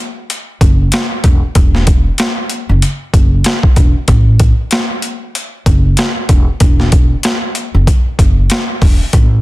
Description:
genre	hip hop, boom-bap hip-hop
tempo	95 BPM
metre	4/4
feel	swing 58% on 16ths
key	unclear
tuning	A4 = 440 Hz
part	boom bap sampler-style drum kit	drums	0.3-9.3 s	hi-hat, kick drum, snare drum	-11 LUFS	equal	overdrive
part	upright bass	bass	0.6-9.4 s	E1 to A1	-12 LUFS	equal	none
room	little or no reverb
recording	dense, heavily limited modern master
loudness	-9 LUFS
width	side -18 dB against mid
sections	0.0-9.4 A section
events	none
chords	none

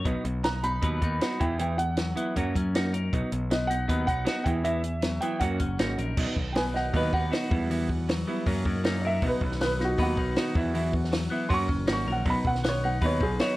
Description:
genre	indie rock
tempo	158 BPM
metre	4/4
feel	straight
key	B major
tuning	A4 = 443 Hz
part	overdriven electric guitar	riff	0.0-13.6 s	B2 to B4	-34 LUFS	left 4 dB	phaser
part	raw garage guitar	riff	0.0-13.6 s	E3 to F#4	-32 LUFS	right 2 dB	overdrive, wide subtle chorus, slapback echo
part	modern bright picked electric bass	bass	0.1-13.4 s	F#1 to F#2	-30 LUFS	equal	none
part	compact cocktail drum kit	drums	0.1-13.5 s	crash cymbal, hi-hat, kick drum, snare drum	-30 LUFS	equal	none
part	dark upright piano	melody	0.4-13.6 s	E#4 to C#6	-30 LUFS	right 1 dB	slapback echo
part	sweeping resonant pad	sustained chords	6.2-13.6 s	B2 to F#5	-39 LUFS	equal	none
room	studio reverb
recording	worn, warbling old tape, cassette tape, warbly pitch drift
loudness	-24 LUFS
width	side -18 dB against mid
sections	0.0-6.2 A section; 6.2-13.6 B section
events	upright piano solo 6.2-13.6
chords	0.1 B; 1.4 Esus2; 2.4 F#6; 3.1 B; 4.5 Esus2; 5.4 F#6; 6.2 B; 7.5 Emadd9; 8.5 F#6; 9.2 B; 10.6 Esus2; 11.5 F#6; 12.3 B

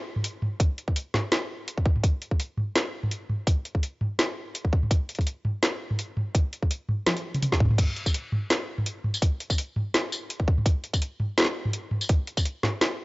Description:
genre	drum and bass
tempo	167 BPM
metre	4/4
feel	swing 55% on 16ths, half-time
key	none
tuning	none
part	drum and bass drum kit	drums	0.2-12.9 s	crash cymbal, hi-hat, snare drum, tambourine, toms	-25 LUFS	equal	none
part	electronic kick drum	drums	0.6-12.4 s	none	-23 LUFS	equal	none
room	light reverb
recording	dry, gritty hardware recording, cassette tape, nothing above 7.8 kHz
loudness	-24 LUFS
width	side -22 dB against mid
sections	0.0-13.0 A section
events	drum fill 7.1-7.8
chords	none

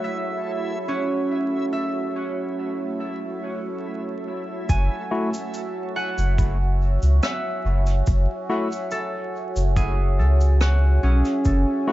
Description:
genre	ambient dub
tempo	71 BPM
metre	4/4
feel	straight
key	F# minor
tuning	A4 = 440 Hz
part	deep dark ambient pad	sustained chords	0.0-11.9 s	F#4 to G#5	-30 LUFS	right 2 dB	chorus, built-in reverb
part	concert harp	arpeggios	0.0-11.9 s	C#4 to G#5	-28 LUFS	right 1 dB	dub echo
part	backwards swelling texture	texture	0.0-4.7 s	A3 to E4	-35 LUFS	equal	built-in reverb
part	warm sub bass	bass	4.7-11.6 s	F#1 to C#2	-18 LUFS	equal	none
part	cabasa and rim click	drums	4.7-11.6 s	none	-32 LUFS	equal	dub echo
part	electronic kick drum	drums	4.7-11.6 s	none	-22 LUFS	equal	none
part	barky tine electric piano	stabs	5.1-11.9 s	A3 to F#4	-30 LUFS	left 2 dB	overdrive, dub echo
room	light reverb, small room ambience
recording	vinyl crackle, nothing above 7.7 kHz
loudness	-20 LUFS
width	side -16 dB against mid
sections	0.0-4.7 A section; 4.7-11.9 B section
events	none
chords	0.0 F#m7

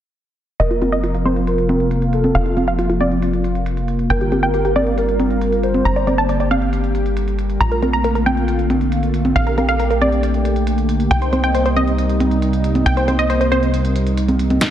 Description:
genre	uplifting trance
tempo	137 BPM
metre	4/4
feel	straight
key	unclear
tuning	A4 = 441 Hz
part	wide unison pluck	melody	0.6-14.7 s	Eb4 to Bb5	-20 LUFS	equal	sidechain pumping, digital delay
part	warm velvety synth lead	second line	0.6-6.2 s	A4 to C5	-23 LUFS	right 1 dB	chorus, digital delay
part	analog string pad	sustained chords	0.6-14.7 s	C3 to G4	-21 LUFS	left 1 dB	ensemble chorus, sidechain pumping
part	tight sequencer bass	bass	0.6-14.6 s	F1 to C2	-20 LUFS	equal	sidechain pumping
part	big-room dance drum kit	drums	0.6-14.7 s	congas, hi-hat, snare drum	-22 LUFS	right 2 dB	overdrive, sidechain pumping on hats, low-pass filter on hats, sidechain pumping on perc, low-pass filter on perc, low-pass filter on snare, low-pass filter on room
part	electronic kick drum	drums	14.6-14.7 s	none	-19 LUFS	equal	overdrive, high-pass filter on kick, high-pass filter on room
part	riser	sound effects	14.6-14.7 s	none	barely audible	none	none
room	moderate scoring stage reverb, RT60 1.8 s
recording	dense, heavily limited modern master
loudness	-15 LUFS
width	side -11 dB against mid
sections	0.6-14.6 A section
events	filter sweep on synth pluck 0.6-14.6; filter sweep on analog synth pad 0.6-14.6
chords	0.6 Fsus4; 4.1 Gm7; 7.6 Bbmaj7; 11.1 Cm7

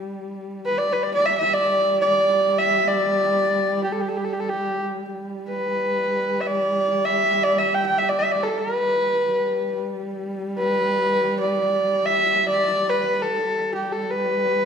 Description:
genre	mongolian traditional, Mongolian folk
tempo	free time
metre	none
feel	none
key	G gong mode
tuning	A4 = 439 Hz
part	dark horsehead fiddle	drone	0.0-14.7 s	G3	-28 LUFS	right 1 dB	none
part	rich horsehead fiddle	melody	0.7-14.7 s	G4 to G5	-20 LUFS	equal	none
room	wet scoring stage reverb, RT60 1.8 s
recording	none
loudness	-19 LUFS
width	side -7 dB against mid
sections	0.0-5.1 A section; 5.1-14.7 A section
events	none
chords	none

